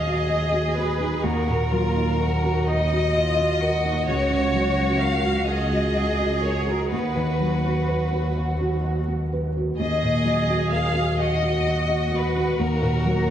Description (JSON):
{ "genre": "neoclassical piano and strings", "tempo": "43 BPM (dotted quarters)", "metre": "6/8", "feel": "rubato", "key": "Eb minor", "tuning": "A4 = 440 Hz", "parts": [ { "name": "rich chamber violin section", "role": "melody", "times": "0.0-13.3 s", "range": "Bb4 to F5", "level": "-26 LUFS", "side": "left 3 dB", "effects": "tape echo" }, { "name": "rich cello", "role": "second line", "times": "0.0-13.3 s", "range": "Eb4 to Ab4", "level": "-29 LUFS", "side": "right 4 dB", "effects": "tape echo" }, { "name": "felt-muted upright piano", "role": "accompaniment", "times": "0.0-13.3 s", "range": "Db2 to Gb5", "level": "-25 LUFS", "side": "right 1 dB", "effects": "ensemble chorus" }, { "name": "warm double bass", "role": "bass", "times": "0.0-13.3 s", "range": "Db2 to Eb2", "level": "-25 LUFS", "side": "equal", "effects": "none" } ], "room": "moderate lush hall reverb, RT60 2.0 s, small room ambience", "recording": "dreamy mix soaked in reverb, lossy compression artefacts", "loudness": "-20 LUFS", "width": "side -10 dB against mid", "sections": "0.0-13.3 A section", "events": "none", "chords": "0.0 Ebm; 4.1 Gb/Db; 6.9 B/D#; 9.8 Ebm" }